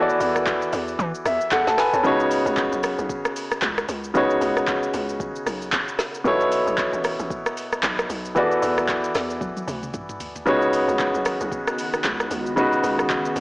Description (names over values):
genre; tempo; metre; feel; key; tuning
amapiano; 114 BPM; 4/4; swing 58% on 16ths; C# minor; A4 = 439 Hz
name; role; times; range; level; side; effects
warm grand piano; accompaniment; 0.0-13.4 s; B2 to A5; -21 LUFS; equal; none
hollow log drum bass; bass; 0.0-13.4 s; A1 to E3; -31 LUFS; equal; none
afro-pop drum kit; drums; 0.1-13.4 s; handclaps, hi-hat, kick drum, rim click, shaker, snare drum, toms; -26 LUFS; equal; soft clipping on snare
glassy FM pad; sustained chords; 11.3-13.4 s; D#3 to F#4; -31 LUFS; equal; ensemble chorus, built-in reverb, sidechain pumping
room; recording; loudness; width
moderate lush hall reverb, RT60 1.6 s, digital ambience; blown-out, overdriven recording, overdrive, small speaker sound; -20 LUFS; side -24 dB against mid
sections
0.0-13.4 A section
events
grand piano fill 1.0-2.0; drum fill 9.4-10.5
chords
0.0 E9sus4; 2.0 C#9sus4; 6.3 B9sus4; 8.4 E9sus4; 10.5 C#9sus4